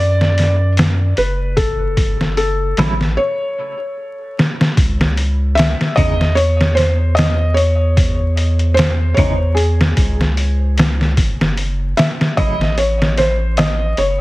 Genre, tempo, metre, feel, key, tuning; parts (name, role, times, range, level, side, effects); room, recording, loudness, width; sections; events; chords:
trip hop; 75 BPM; 4/4; swing 55% on 16ths; C# harmonic minor; A4 = 440 Hz
felt-muted upright piano; melody; 0.0-14.2 s; G#4 to E5; -19 LUFS; equal; dub echo
round analog bass; bass; 0.0-14.2 s; F#1 to F#2; -16 LUFS; equal
trip hop sampler-style drum kit; drums; 0.2-14.2 s; hi-hat, kick drum, snare drum; -16 LUFS; equal; studio reverb
clean electric guitar; accompaniment; 2.8-12.5 s; C#3 to E4; -22 LUFS; right 1 dB; tremolo, tape echo
digital ambience; heavily compressed radio sound, multiband compression, vinyl crackle; -13 LUFS; side -19 dB against mid
0.0-4.8 A section; 4.8-14.2 B section
break 3.2-4.8; drum fill 4.4-4.8
0.0 D; 1.6 F#m; 4.8 C#m; 11.2 F#m